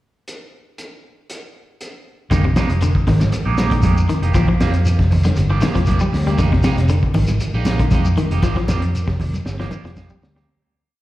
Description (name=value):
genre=afrobeat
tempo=118 BPM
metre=4/4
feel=straight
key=F dorian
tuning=A4 = 440 Hz
part: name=crunchy breakbeat drum kit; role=drums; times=0.3-10.5 s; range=hi-hat, kick drum, snare drum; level=-22 LUFS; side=equal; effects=none
part: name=electric guitar at the edge of break-up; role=arpeggios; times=2.3-10.5 s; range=C3 to G3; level=-24 LUFS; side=left 4 dB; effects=none
part: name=electric guitar at the edge of break-up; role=stabs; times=2.3-10.5 s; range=F3 to G4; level=-26 LUFS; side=right 6 dB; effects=phaser, analog delay, slapback echo
part: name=fingered electric bass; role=bass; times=2.3-10.4 s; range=F1 to F2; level=-18 LUFS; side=equal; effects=none
part: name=congas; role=percussion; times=2.3-10.2 s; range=none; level=-23 LUFS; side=right 1 dB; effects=none
part: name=shekere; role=percussion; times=2.3-10.4 s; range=none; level=-26 LUFS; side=left 1 dB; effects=none
room=little or no reverb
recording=live gig heard through the venue's PA, recital hall reverb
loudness=-15 LUFS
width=side -16 dB against mid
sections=0.3-2.3 pickup bar; 2.3-10.5 groove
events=fade-out 8.4-10.5; drum fill 9.4-10.5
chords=0.3 N.C.; 2.3 Fm11; 4.3 Gm7; 6.4 Fm11; 8.4 Gm7